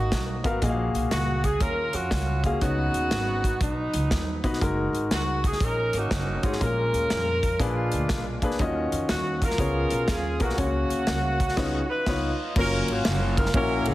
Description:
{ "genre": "uptempo gospel", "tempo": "120 BPM", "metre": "4/4", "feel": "swing 65% on 8ths", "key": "F# major", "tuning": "A4 = 439 Hz", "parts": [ { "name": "warm saxophone section", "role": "melody", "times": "0.0-13.9 s", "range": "F#3 to B4", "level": "-28 LUFS", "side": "equal", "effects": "slapback echo" }, { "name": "upright bass", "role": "bass", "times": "0.0-13.9 s", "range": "F#1 to E#2", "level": "-29 LUFS", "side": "equal", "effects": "none" }, { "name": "modern studio drum kit", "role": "drums", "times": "0.1-13.9 s", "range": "crash cymbal, hi-hat, kick drum, ride cymbal, snare drum", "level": "-28 LUFS", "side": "equal", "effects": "none" }, { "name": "warm concert grand piano", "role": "accompaniment", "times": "0.4-13.9 s", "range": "A#2 to E#5", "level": "-28 LUFS", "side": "left 2 dB", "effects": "none" } ], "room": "light reverb, studio ambience", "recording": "heavily compressed radio sound, multiband compression", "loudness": "-23 LUFS", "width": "side -16 dB against mid", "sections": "0.0-12.6 A section; 12.6-13.9 B section", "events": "band accent 11.6-12.6", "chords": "0.0 Bmaj7; 0.6 F#maj9/A#; 2.6 C#9sus4; 4.6 F#69; 6.6 A#m7; 7.6 A#7b9; 8.6 D#m9; 9.6 C#7; 10.6 F#/C#; 11.6 C#9; 12.6 F#maj7", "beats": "0.12 | 0.62 1.12 1.62 2.12 | 2.62 3.12 3.61 4.11 | 4.61 5.11 5.61 6.11 | 6.61 7.10 7.60 8.10 | 8.60 9.09 9.59 10.09 | 10.58 11.08 11.57 12.06 | 12.56 13.05 13.54" }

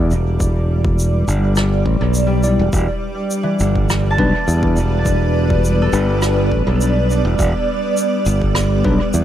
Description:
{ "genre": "ambient dub", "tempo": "103 BPM", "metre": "4/4", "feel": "straight", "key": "E minor", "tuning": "A4 = 441 Hz", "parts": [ { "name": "granular cloud pad", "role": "sustained chords", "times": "0.0-9.2 s", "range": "G3 to D5", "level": "-20 LUFS", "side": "right 1 dB", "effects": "built-in reverb" }, { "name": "modern bright fingered electric bass", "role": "bass", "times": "0.0-9.2 s", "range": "E1 to E2", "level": "-16 LUFS", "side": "equal", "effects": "none" }, { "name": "shaker and rim click", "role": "drums", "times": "0.1-9.2 s", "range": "none", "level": "-26 LUFS", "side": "right 1 dB", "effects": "dub echo" }, { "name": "electronic kick drum", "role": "drums", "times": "0.4-9.0 s", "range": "none", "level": "-22 LUFS", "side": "equal", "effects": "overdrive" }, { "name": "concert harp", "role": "arpeggios", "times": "2.3-8.1 s", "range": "E3 to A5", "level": "-26 LUFS", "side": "left 1 dB", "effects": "dub echo" }, { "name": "tine electric piano", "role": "stabs", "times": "2.4-9.0 s", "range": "G3 to D5", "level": "-24 LUFS", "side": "left 3 dB", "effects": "medium tremolo, dub echo" } ], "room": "moderate spring reverb, RT60 2.2 s", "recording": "none", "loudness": "-14 LUFS", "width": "side -11 dB against mid", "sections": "0.0-9.2 A section", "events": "none", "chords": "0.0 Em7", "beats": "| 0.40 0.98 1.57 2.15 | 2.73 3.31 3.90 4.48 | 5.06 5.64 6.23 6.81 | 7.39 7.97 8.56 9.14" }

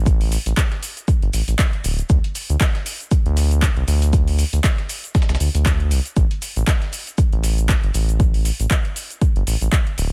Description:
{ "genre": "deep house", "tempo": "118 BPM", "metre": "4/4", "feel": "swing 57% on 16ths", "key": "A minor", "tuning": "A4 = 440 Hz", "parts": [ { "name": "round analog bass", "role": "bass", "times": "0.0-10.1 s", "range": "D1 to D2", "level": "-20 LUFS", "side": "equal", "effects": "sidechain pumping" }, { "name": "deep house drum kit", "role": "drums", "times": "0.1-10.1 s", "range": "cabasa, handclaps, hi-hat", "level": "-29 LUFS", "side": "equal", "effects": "overdrive, small room reverb" }, { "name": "dusty soul sampler-style drum kit", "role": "drums", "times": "0.1-8.1 s", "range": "hi-hat, shaker, snare drum", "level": "-36 LUFS", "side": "equal", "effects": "sidechain pumping on perc, high-pass filter on perc, small room reverb, sidechain pumping on hats, high-pass filter on hats, high-pass filter on snare" }, { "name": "electronic kick drum", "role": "drums", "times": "0.1-9.8 s", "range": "none", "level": "-20 LUFS", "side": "equal", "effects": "overdrive, small room reverb" } ], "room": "digital ambience", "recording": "none", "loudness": "-19 LUFS", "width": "mono", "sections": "0.0-10.1 A section", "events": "none", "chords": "none", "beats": "| 0.06 0.57 1.08 1.59 | 2.10 2.60 3.11 3.62 | 4.13 4.64 5.15 5.66 | 6.16 6.67 7.18 7.69 | 8.20 8.71 9.21 9.72" }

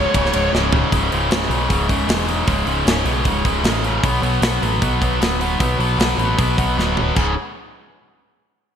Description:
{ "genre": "heavy metal", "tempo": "154 BPM", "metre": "4/4", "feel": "straight", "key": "unclear", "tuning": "A4 = 440 Hz", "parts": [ { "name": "bluesy overdriven lead guitar", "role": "melody", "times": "0.0-0.5 s", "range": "C#5", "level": "-23 LUFS", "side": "equal", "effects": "distortion, ping-pong delay" }, { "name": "tight distorted guitar", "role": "riff", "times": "0.0-7.3 s", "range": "C#2 to B3", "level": "-19 LUFS", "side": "left 1 dB", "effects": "distortion" }, { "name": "deep dub picked electric bass", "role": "bass", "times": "0.0-7.3 s", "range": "C#1 to B1", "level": "-22 LUFS", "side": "equal", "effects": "none" }, { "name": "tight metal drum kit", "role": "drums", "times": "0.1-7.3 s", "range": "crash cymbal, hi-hat, kick drum, ride cymbal, snare drum, toms", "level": "-21 LUFS", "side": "equal", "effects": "gated reverb" } ], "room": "moderate lush hall reverb, RT60 1.6 s, small room ambience", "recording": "bright 1980s-style digital production", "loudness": "-16 LUFS", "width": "side -8 dB against mid", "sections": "0.9-7.2 A section; 7.2-8.7 B section", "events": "drum fill 0.5-0.9, 6.8-7.2", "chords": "0.0 C#5; 4.0 Bm; 7.2 C#5", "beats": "0.14 0.53 | 0.92 1.31 1.70 2.09 | 2.48 2.87 3.26 3.65 | 4.04 4.43 4.82 5.21 | 5.60 5.99 6.38 6.77 | 7.17" }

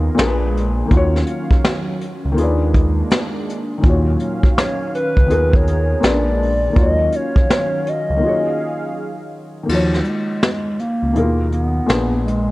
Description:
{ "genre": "lo-fi hip hop", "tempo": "82 BPM", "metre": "4/4", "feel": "swing 64% on 16ths", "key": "Eb minor", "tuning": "A4 = 440 Hz", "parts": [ { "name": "felt-muted upright piano", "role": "accompaniment", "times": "0.0-12.5 s", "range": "Bb2 to D5", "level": "-22 LUFS", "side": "left 2 dB", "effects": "cassette tape, low-pass filter" }, { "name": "warm analog pad", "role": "sustained chords", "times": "0.0-9.7 s", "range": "Eb3 to F5", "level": "-26 LUFS", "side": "right 1 dB", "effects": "chorus, low-pass filter" }, { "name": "smooth gliding synth bass", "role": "bass", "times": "0.0-12.5 s", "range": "Bb1 to Eb2", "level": "-19 LUFS", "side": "equal", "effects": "none" }, { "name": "vintage brush drum kit", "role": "drums", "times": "0.2-12.5 s", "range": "crash cymbal, hi-hat, kick drum, snare drum", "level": "-17 LUFS", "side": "equal", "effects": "none" }, { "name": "hollow clarinet-like synth lead", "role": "melody", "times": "4.6-12.5 s", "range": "F3 to Eb5", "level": "-20 LUFS", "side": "equal", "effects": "chorus, low-pass filter" } ], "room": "small room reverb", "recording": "cassette tape", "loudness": "-15 LUFS", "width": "side -19 dB against mid", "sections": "0.0-9.7 A section; 9.7-12.5 B section", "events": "break 8.2-9.7; kick muted 9.7-12.5", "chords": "0.2 Bb7b9; 0.9 Ebm9; 2.4 Bb7b9/Eb; 3.8 Ebm9; 5.3 Db13/Eb; 6.0 Bb7b9; 6.8 Ebm9; 8.2 Ebm11; 9.7 Ebm9; 11.2 Abm69/Eb; 11.9 Bb7b9", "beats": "0.18 | 0.91 1.64 2.37 3.10 | 3.84 4.57 5.30 6.03 | 6.76 7.50 8.23 8.96 | 9.69 10.42 11.15 11.89" }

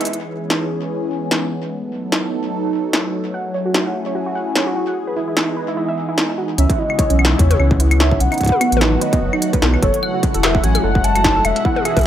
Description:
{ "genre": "IDM", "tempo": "148 BPM", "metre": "4/4", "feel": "swing 56% on 16ths", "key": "C# minor", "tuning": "A4 = 440 Hz", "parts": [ { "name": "phased analog pad", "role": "sustained chords", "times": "0.0-12.1 s", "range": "B2 to A4", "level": "-23 LUFS", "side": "equal", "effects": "phaser, chorus, sidechain pumping" }, { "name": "warbly dusty pluck", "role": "arpeggios", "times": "0.0-0.1, 3.3-11.9 s", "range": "B3 to F#5", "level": "-23 LUFS", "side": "right 3 dB", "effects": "chorus, tape echo" }, { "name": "industrial drum kit", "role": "drums", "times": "0.0-12.1 s", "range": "claves, hi-hat, snare drum, toms", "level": "-20 LUFS", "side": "left 1 dB", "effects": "overdrive, small room ambience" }, { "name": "bubbling stepped-filter texture", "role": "texture", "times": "0.0-0.1, 6.6-12.1 s", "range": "B3 to F#5", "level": "-32 LUFS", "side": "equal", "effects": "chorus, built-in reverb" }, { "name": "warm velvety synth lead", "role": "melody", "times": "6.6-12.1 s", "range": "B4 to A5", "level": "-21 LUFS", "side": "equal", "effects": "chorus, tape echo" }, { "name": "warm sub bass", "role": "bass", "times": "6.6-12.1 s", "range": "E1 to E2", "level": "-16 LUFS", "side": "equal", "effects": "none" }, { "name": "electronic kick drum", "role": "drums", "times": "6.7-12.0 s", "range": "none", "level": "-19 LUFS", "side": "equal", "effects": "distortion, overdrive, small room ambience" } ], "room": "light reverb, digital ambience", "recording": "none", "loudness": "-15 LUFS", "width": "side -11 dB against mid", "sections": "0.1-6.6 A section; 6.6-12.1 B section", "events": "none", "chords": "0.1 C#m7; 1.7 B7; 3.3 F#m9; 5.0 Emaj7; 6.6 C#m7; 8.2 B7; 9.8 F#m9; 11.4 E", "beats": "| 0.10 0.50 0.91 1.31 | 1.72 2.12 2.53 2.93 | 3.34 3.75 4.15 4.55 | 4.96 5.37 5.77 6.18 | 6.58 6.99 7.39 7.80 | 8.20 8.61 9.02 9.42 | 9.83 10.23 10.64 11.04 | 11.45 11.85" }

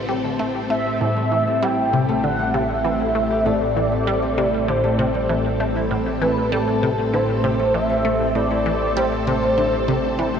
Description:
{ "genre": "ambient, sequencer-driven space music", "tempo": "98 BPM", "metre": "4/4", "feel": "straight", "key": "A minor", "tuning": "A4 = 440 Hz", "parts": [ { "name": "expressive synth lead", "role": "melody", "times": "0.0-10.4 s", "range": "A4 to G5", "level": "-22 LUFS", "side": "equal", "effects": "ensemble chorus, analog delay" }, { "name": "phased string machine", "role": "sustained chords", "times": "0.0-10.4 s", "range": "A2 to A4", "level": "-23 LUFS", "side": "equal", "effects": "ensemble chorus, phaser" }, { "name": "analog drone", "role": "bass", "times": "0.0-10.4 s", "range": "A1", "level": "-29 LUFS", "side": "equal", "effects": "chorus" }, { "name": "bubbling stepped-filter texture", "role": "texture", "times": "0.2-10.4 s", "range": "C4", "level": "-33 LUFS", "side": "equal", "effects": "none" }, { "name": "resonant blip pluck", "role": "riff", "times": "0.1-10.4 s", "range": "A2 to A3", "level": "-25 LUFS", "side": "equal", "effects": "phaser, analog delay" }, { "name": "concert harp", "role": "arpeggios", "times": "1.0-10.4 s", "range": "G3 to G4", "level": "-29 LUFS", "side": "left 1 dB", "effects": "auto-pan, analog delay" } ], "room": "wet huge ambient reverb, RT60 8.0 s", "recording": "worn, warbling old tape, cassette tape, warbly pitch drift", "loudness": "-18 LUFS", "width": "side -7 dB against mid", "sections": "0.0-10.4 A section", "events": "none", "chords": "0.0 Am7", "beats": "0.40 | 1.01 1.62 2.23 2.85 | 3.46 4.07 4.68 5.29 | 5.91 6.52 7.13 7.74 | 8.36 8.97 9.58 10.19" }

